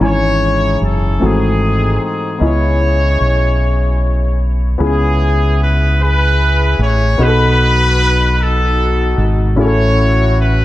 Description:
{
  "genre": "slow gospel",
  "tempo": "50 BPM (dotted quarters)",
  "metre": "6/8",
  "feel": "straight",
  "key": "C# minor",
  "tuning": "A4 = 441 Hz",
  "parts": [
    { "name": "clear horn section", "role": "melody", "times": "0.0-10.6 s", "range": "B3 to C#5", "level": "-17 LUFS", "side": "left 1 dB", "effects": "dub echo" },
    { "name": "warm baby grand piano", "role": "accompaniment", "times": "0.0-10.6 s", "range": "G#2 to G#5", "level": "-19 LUFS", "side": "left 2 dB", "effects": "none" },
    { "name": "fingered electric bass", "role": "bass", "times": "0.0-10.6 s", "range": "F#1 to C#2", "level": "-14 LUFS", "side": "equal", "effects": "none" }
  ],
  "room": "studio reverb",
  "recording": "echo-heavy mix",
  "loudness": "-11 LUFS",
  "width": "side -16 dB against mid",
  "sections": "0.0-4.8 A section; 4.8-10.6 B section",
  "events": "none",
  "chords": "0.0 C#m/G#; 1.2 G#7b9b13; 2.4 C#m9; 4.8 C#m7; 7.2 B7; 9.6 F#m7/A"
}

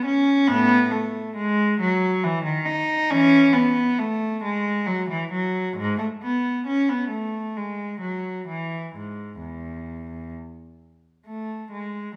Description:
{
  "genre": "classical, baroque-style suite movement for unaccompanied cello",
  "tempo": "64-70 BPM",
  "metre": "3/4",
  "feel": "rubato",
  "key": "E major",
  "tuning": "A4 = 440 Hz",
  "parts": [
    { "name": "warm cello", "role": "solo", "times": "0.0-12.2 s", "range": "E2 to D#4", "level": "-23 LUFS", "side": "equal", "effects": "none" }
  ],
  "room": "wet stone room reverb, RT60 1.1 s",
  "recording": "none",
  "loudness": "-23 LUFS",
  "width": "mono",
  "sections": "0.0-11.3 A section",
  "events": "none",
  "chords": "none"
}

